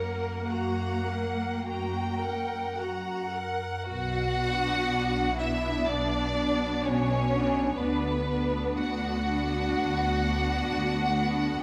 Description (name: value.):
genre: classical, slow romantic movement for string orchestra.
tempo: 51-66 BPM.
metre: 4/4.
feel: rubato.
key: B minor.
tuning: A4 = 440 Hz.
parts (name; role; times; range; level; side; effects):
clear studio violin section; melody; 0.0-11.6 s; B4 to A#5; -35 LUFS; equal; none.
rich chamber violin section; second line; 0.0-11.6 s; B3 to G5; -35 LUFS; equal; none.
rich studio viola section; accompaniment; 0.0-11.6 s; B3 to A#4; -35 LUFS; equal; none.
rich studio double bass section; bass; 0.0-11.6 s; B1 to F#2; -36 LUFS; equal; none.
warm symphonic cello section; bass; 0.0-11.5 s; D2 to A#3; -36 LUFS; equal; none.
room: moderate scoring stage reverb, RT60 1.7 s.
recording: none.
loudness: -28 LUFS.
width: mono.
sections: 0.0-3.9 A section; 3.9-11.6 B section.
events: none.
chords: 0.0 F#; 3.9 Bm; 7.8 Bm/D.